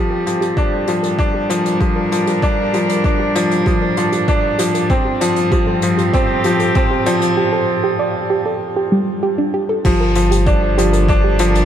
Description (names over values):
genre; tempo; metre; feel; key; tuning
piano and strings electronica; 97 BPM; 4/4; straight; G minor; A4 = 441 Hz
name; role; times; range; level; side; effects
dark string quartet; sustained chords; 0.0-11.7 s; G2 to Bb4; -22 LUFS; right 1 dB; shimmer reverb
soft round pluck; arpeggios; 0.0-11.5 s; G3 to D5; -22 LUFS; right 3 dB; chorus, sidechain pumping, digital delay, shimmer reverb
bright upright piano; riff; 0.0-11.7 s; F3 to D4; -17 LUFS; left 1 dB; digital delay, shimmer reverb
soft brush drum kit; drums; 0.3-11.7 s; crash cymbal, hi-hat; -29 LUFS; left 4 dB; none
electronic kick drum; drums; 0.6-11.2 s; none; -18 LUFS; equal; none
warm sub bass; bass; 9.8-11.7 s; G1; -17 LUFS; equal; sidechain pumping
room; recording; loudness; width
moderate concert hall reverb, RT60 2.4 s; none; -14 LUFS; side -9 dB against mid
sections
0.0-9.8 A section; 9.8-11.7 B section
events
build-up 0.0-9.8; filter sweep on synth arpeggio sound 0.0-9.8; break 7.4-9.8; drop 9.8-11.7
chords
0.0 Gm7; 4.9 Fadd9/G; 9.8 Gm7